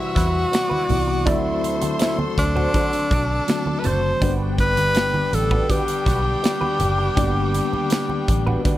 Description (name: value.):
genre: lush 1970s-style soul.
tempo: 81 BPM.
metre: 4/4.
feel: straight.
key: G major.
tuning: A4 = 439 Hz.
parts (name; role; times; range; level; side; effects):
breathy tenor saxophone; melody; 0.0-8.8 s; D4 to C5; -23 LUFS; equal; tape echo.
bright studio violin section; second line; 0.0-8.8 s; G3 to E6; -33 LUFS; right 1 dB; none.
mellow tine electric piano; accompaniment; 0.0-8.8 s; C3 to B4; -28 LUFS; left 1 dB; medium stereo tremolo.
warm horn section; stabs; 0.0-8.8 s; G3 to A4; -31 LUFS; left 8 dB; none.
electric guitar at the edge of break-up; riff; 0.2-8.8 s; C4 to D5; -29 LUFS; right 3 dB; wah.
vintage muted fingered electric bass; bass; 0.2-8.6 s; F#1 to E2; -24 LUFS; equal; none.
modern studio drum kit; drums; 0.2-8.8 s; hi-hat, kick drum, snare drum; -24 LUFS; equal; none.
congas; percussion; 0.2-8.8 s; none; -30 LUFS; right 2 dB; none.
room: little or no reverb.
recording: none.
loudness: -18 LUFS.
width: side -14 dB against mid.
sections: 0.0-8.8 A section.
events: none.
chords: 0.0 Cmaj7; 1.3 D7; 4.2 Gmaj7.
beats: 0.53 | 1.27 2.01 2.74 3.48 | 4.22 4.96 5.70 6.43 | 7.17 7.91 8.65.